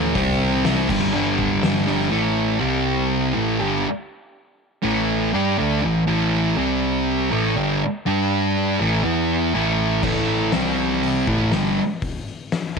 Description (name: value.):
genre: garage rock duo or trio.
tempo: 121 BPM.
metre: 4/4.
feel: straight.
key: A minor.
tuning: A4 = 440 Hz.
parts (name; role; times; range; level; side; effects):
thick fuzz guitar; riff; 0.0-12.8 s; G2 to G4; -19 LUFS; equal; distortion.
hollow-body short-scale picked electric bass; bass; 0.0-12.8 s; G1 to G2; -28 LUFS; equal; overdrive.
oversized low-tuned drum kit; drums; 0.1-2.1, 10.0-12.8 s; crash cymbal, hi-hat, kick drum, snare drum; -26 LUFS; left 4 dB; none.
room: light reverb, small room ambience.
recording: 1960s-style stereo.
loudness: -18 LUFS.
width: side -5 dB against mid.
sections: 0.0-2.1 A section; 2.1-12.8 B section.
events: none.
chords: 0.2 C5; 0.9 G5; 2.1 A5; 2.6 C5; 3.4 A5; 6.6 C5; 7.3 A5; 8.1 G5; 8.8 A5; 9.1 E5; 9.6 A5; 10.5 C5; 11.3 A5.